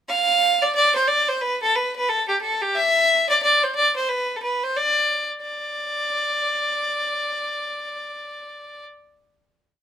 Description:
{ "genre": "celtic folk", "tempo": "180 BPM", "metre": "4/4", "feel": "swing 60% on 8ths", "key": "D dorian", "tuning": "A4 = 441 Hz", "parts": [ { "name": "clear fiddle", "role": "solo", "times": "0.1-8.8 s", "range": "G4 to F5", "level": "-19 LUFS", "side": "equal", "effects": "none" } ], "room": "light reverb", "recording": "minimal, uncompressed stereo recording", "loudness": "-19 LUFS", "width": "side -9 dB against mid", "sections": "0.1-5.4 A section; 5.4-8.1 final note", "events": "none", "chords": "none" }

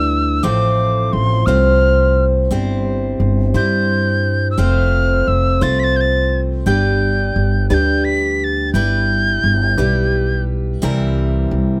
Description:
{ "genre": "acoustic folk duo or small band", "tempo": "58 BPM (dotted quarters)", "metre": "6/8", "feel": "straight", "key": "unclear", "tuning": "A4 = 440 Hz", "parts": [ { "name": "mellow wooden whistle", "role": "melody", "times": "0.0-10.4 s", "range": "C6 to B6", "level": "-22 LUFS", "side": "equal", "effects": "none" }, { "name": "picked steel-string acoustic guitar", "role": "accompaniment", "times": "0.0-11.8 s", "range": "A2 to C5", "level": "-21 LUFS", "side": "equal", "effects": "none" }, { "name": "upright bass", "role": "bass", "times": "0.0-11.8 s", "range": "F1 to G2", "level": "-19 LUFS", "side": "equal", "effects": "none" } ], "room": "light reverb", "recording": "close, detailed microphones", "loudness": "-16 LUFS", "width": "mono", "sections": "0.0-11.8 A section", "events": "none", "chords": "0.4 F/A; 2.5 C/G; 4.6 F; 6.7 G; 8.7 Em/G; 10.8 C7" }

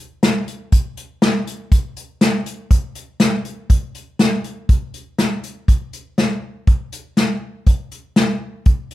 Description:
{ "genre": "country", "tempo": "121 BPM", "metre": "4/4", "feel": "straight", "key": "none", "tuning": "none", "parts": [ { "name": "unplugged drum kit", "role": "drums", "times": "0.2-8.9 s", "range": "hi-hat, kick drum, snare drum", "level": "-15 LUFS", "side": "equal", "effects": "none" } ], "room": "little or no reverb", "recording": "none", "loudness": "-17 LUFS", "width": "side -15 dB against mid", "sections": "0.0-5.7 A section; 5.7-8.9 B section", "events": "none", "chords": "none" }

